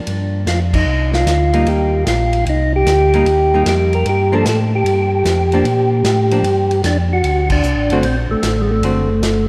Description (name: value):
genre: soul jazz organ trio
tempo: 151 BPM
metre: 4/4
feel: swing 67% on 8ths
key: G minor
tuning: A4 = 438 Hz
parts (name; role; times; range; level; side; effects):
- archtop guitar, miked and amplified; accompaniment; 0.0-9.1 s; D3 to F#4; -26 LUFS; equal; none
- mellow tonewheel organ; bass; 0.1-9.5 s; F#1 to Bb2; -20 LUFS; equal; slow rotary speaker
- warm soul drum kit; drums; 0.1-9.4 s; crash cymbal, hi-hat, kick drum, ride cymbal, snare drum; -26 LUFS; equal; none
- percussive tonewheel organ; melody; 0.5-9.5 s; Ab3 to Bb4; -18 LUFS; equal; slow rotary speaker
room: moderate cathedral reverb, RT60 5.5 s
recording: in a vast, echoing space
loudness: -15 LUFS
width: mono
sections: 0.0-9.5 A section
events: band accent 0.7, 7.4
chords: 0.0 Gm7; 0.9 Cm7; 4.1 Gm7; 7.2 D7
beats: 0.08 0.47 | 0.87 1.27 1.67 2.07 | 2.47 2.86 3.26 3.66 | 4.06 4.46 4.85 5.25 | 5.65 6.05 6.45 6.84 | 7.24 7.64 8.04 8.44 | 8.83 9.23